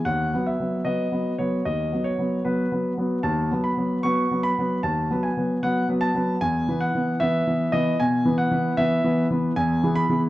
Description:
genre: classical-period piano sonatina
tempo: 76 BPM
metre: 4/4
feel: straight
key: E major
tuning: A4 = 440 Hz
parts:
  - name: warm grand piano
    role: solo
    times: 0.0-10.3 s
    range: D#2 to C#6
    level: -21 LUFS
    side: equal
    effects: none
room: moderate recital hall reverb, RT60 1.7 s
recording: close, detailed microphones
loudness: -21 LUFS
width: side -16 dB against mid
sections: 0.0-10.3 A section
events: none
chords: 0.1 B/D#; 6.4 E5; 9.6 E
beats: | 0.06 0.86 1.66 2.46 | 3.25 4.05 4.84 5.63 | 6.42 7.21 8.01 8.79 | 9.58

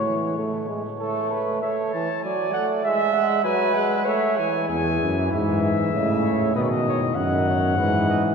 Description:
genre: classical, imitative canzona for brass ensemble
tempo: 97 BPM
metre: 3/4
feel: straight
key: A major, E major from 4.7 s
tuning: A4 = 439 Hz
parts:
  - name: mellow trumpet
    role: melody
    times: 0.0-8.3 s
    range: C#5 to A5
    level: -26 LUFS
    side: left 4 dB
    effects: none
  - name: dark trumpet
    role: second line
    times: 0.0-8.2 s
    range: G#4 to E5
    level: -26 LUFS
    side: right 5 dB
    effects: none
  - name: dark bass trombone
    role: bass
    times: 0.0-0.6, 4.7-8.3 s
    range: E2 to B2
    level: -25 LUFS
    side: equal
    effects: none
  - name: clear trombone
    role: accompaniment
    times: 0.1-8.3 s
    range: C#3 to A3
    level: -26 LUFS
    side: right 1 dB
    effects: none
room: wet cathedral reverb, RT60 5.9 s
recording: heard from further back in the room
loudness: -20 LUFS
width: side -6 dB against mid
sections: 1.0-4.7 A section; 4.7-8.3 B section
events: none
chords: 0.0 A; 2.2 D/F#; 2.8 E/G#; 4.1 A; 4.7 E; 5.9 A; 6.5 B; 7.8 E/G#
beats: 0.36 | 0.99 1.62 2.23 | 2.84 3.44 4.06 | 4.69 5.31 5.93 | 6.55 7.16 7.78

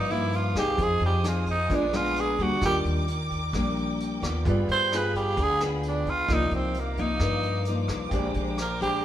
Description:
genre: bossa nova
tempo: 131 BPM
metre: 4/4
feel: straight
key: Eb major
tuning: A4 = 441 Hz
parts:
  - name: growling tenor saxophone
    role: melody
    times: 0.0-9.0 s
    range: Bb3 to C5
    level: -27 LUFS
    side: right 2 dB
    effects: none
  - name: clear baby grand piano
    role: accompaniment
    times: 0.0-9.0 s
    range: Eb4 to Eb5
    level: -36 LUFS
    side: right 4 dB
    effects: none
  - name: nylon-string guitar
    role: accompaniment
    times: 0.0-9.0 s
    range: G2 to Ab4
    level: -30 LUFS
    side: left 3 dB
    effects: none
  - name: warm studio violin section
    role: sustained chords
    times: 0.0-9.0 s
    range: Ab4 to Eb6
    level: -36 LUFS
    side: right 1 dB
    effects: none
  - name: upright bass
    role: bass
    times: 0.0-9.0 s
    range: Bb1 to G2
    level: -29 LUFS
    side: equal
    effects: none
  - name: vintage brush drum kit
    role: drums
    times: 0.1-8.9 s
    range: hi-hat, kick drum, rim click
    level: -35 LUFS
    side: equal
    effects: none
room: moderate stone room reverb, RT60 1.2 s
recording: band playing live in one room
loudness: -23 LUFS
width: side -11 dB against mid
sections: 0.0-9.0 A section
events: tenor saxophone solo 0.0-9.0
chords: 0.0 Cm11; 0.8 Fm7; 1.7 Bb7b9; 2.6 Ebmaj7; 4.5 G7b9; 6.3 Cm11; 8.1 Bb13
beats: 0.33 | 0.79 1.25 1.70 2.16 | 2.62 3.08 3.54 4.00 | 4.46 4.91 5.37 5.83 | 6.29 6.75 7.21 7.66 | 8.12 8.58 9.04

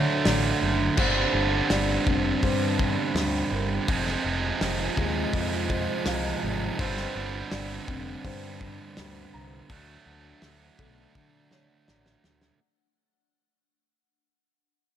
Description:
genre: post-rock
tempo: 83 BPM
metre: 4/4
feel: straight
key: unclear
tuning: A4 = 440 Hz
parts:
  - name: icy glass pad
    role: sustained chords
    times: 0.0-12.6 s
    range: A3 to Ab5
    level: -39 LUFS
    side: left 4 dB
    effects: chorus, built-in reverb
  - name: electric guitar through a small old amp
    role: arpeggios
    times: 0.0-12.6 s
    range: F2 to Eb4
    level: -36 LUFS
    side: left 8 dB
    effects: phaser, slapback echo
  - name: felt-muted upright piano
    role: arpeggios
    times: 0.0-12.6 s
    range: Ab4 to Bb5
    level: -36 LUFS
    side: equal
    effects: slapback echo
  - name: tight distorted guitar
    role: riff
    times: 0.0-12.6 s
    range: F2 to D4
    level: -27 LUFS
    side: right 5 dB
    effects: distortion
  - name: growling picked electric bass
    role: bass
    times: 0.0-12.5 s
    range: F1 to D3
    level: -30 LUFS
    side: left 1 dB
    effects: overdrive
  - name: loose indie drum kit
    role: drums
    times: 0.3-12.6 s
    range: crash cymbal, hi-hat, kick drum, snare drum, toms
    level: -30 LUFS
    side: left 1 dB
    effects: none
room: light reverb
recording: none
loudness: -23 LUFS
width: side -10 dB against mid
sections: 0.0-12.6 A section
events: fade-out 0.0-12.6; drum fill 11.1-12.6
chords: 0.0 D; 1.0 Gsus4; 3.9 Fm7; 6.8 Gsus4; 9.7 D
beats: 0.25 | 0.98 1.71 2.43 3.16 | 3.88 4.61 5.34 6.06 | 6.79 7.52 8.24 8.97 | 9.70 10.42 11.15 11.88

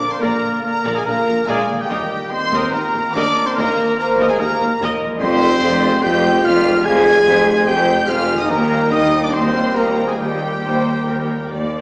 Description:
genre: cinematic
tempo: 144 BPM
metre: 4/4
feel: straight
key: unclear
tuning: A4 = 437 Hz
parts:
  - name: rich symphonic violin section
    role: melody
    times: 0.0-11.5 s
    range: G5 to Ab6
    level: -29 LUFS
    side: equal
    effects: none
  - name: mellow flute section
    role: second line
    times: 0.0-11.7 s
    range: Bb4 to Ab5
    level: -29 LUFS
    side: equal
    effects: none
  - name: warm oboe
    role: second line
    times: 0.0-11.5 s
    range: G4 to Ab5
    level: -28 LUFS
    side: equal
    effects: none
  - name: warm symphonic violin section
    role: second line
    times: 0.0-11.5 s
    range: G5 to Ab6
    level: -30 LUFS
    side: equal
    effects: none
  - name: clear trombone section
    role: sustained chords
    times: 0.0-11.7 s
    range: Ab2 to Bb3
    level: -31 LUFS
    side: equal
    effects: none
  - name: warm French horn section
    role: sustained chords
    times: 0.0-11.5 s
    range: G3 to Ab4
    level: -22 LUFS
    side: equal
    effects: none
  - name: concert harp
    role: arpeggios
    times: 0.0-11.8 s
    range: Bb2 to G5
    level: -38 LUFS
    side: equal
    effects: none
  - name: clear trumpet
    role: stabs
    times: 0.0-11.5 s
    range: G4 to Ab5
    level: -25 LUFS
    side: equal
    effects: none
  - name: rich symphonic viola section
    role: accompaniment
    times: 0.2-11.8 s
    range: D4 to G5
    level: -29 LUFS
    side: equal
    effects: none
  - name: rich symphonic cello section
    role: bass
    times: 0.2-11.8 s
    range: Eb2 to Bb2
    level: -25 LUFS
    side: equal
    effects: none
  - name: rich symphonic double bass section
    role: bass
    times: 0.2-11.8 s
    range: F1 to Eb2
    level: -28 LUFS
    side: equal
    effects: none
room: wet recital hall reverb, RT60 1.4 s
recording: heard from further back in the room, small speaker sound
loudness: -17 LUFS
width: mono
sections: 0.0-11.8 A section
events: none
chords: 0.0 Bb; 1.9 Eb; 5.2 Fmadd9; 8.5 Eb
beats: | 0.22 0.64 1.06 1.48 | 1.90 2.32 2.73 3.15 | 3.56 3.98 4.39 4.81 | 5.22 5.63 6.04 6.45 | 6.86 7.28 7.68 8.10 | 8.51 8.93 9.34 9.76 | 10.19 10.62 11.05 11.49

